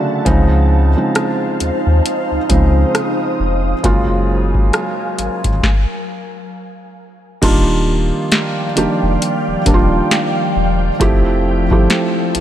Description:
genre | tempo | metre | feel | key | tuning
contemporary R&B | 67 BPM | 4/4 | swing 58% on 16ths | Eb major | A4 = 440 Hz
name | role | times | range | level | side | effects
felt-muted upright piano | accompaniment | 0.0-12.4 s | C#3 to A5 | -17 LUFS | right 2 dB | none
ethereal airy pad | sustained chords | 0.0-12.4 s | F3 to Eb6 | -21 LUFS | left 1 dB | ensemble chorus, built-in reverb
warm sub bass | bass | 0.3-12.4 s | Eb1 to Eb2 | -16 LUFS | equal | none
booming analog drum machine | drums | 0.3-12.4 s | crash cymbal, hi-hat, kick drum, rim click, snare drum | -16 LUFS | equal | none
room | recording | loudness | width
light reverb | none | -13 LUFS | side -11 dB against mid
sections
0.0-7.4 A section; 7.4-12.4 B section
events
felt piano fill 0.0; stop 5.6-7.4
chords
0.3 Dbmaj9; 3.8 Gbmaj9; 7.4 Ebmaj9; 11.0 Fmaj9

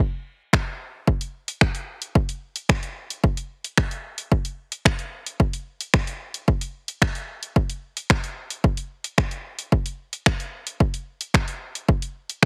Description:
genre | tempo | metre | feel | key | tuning
pop | 111 BPM | 4/4 | straight | none | none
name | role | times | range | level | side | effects
house drum kit | drums | 0.5-12.5 s | finger snaps, hi-hat, kick drum | -23 LUFS | equal | none
room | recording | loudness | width
little or no reverb | heavily compressed radio sound, multiband compression | -25 LUFS | mono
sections
0.0-12.5 A section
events
none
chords
none

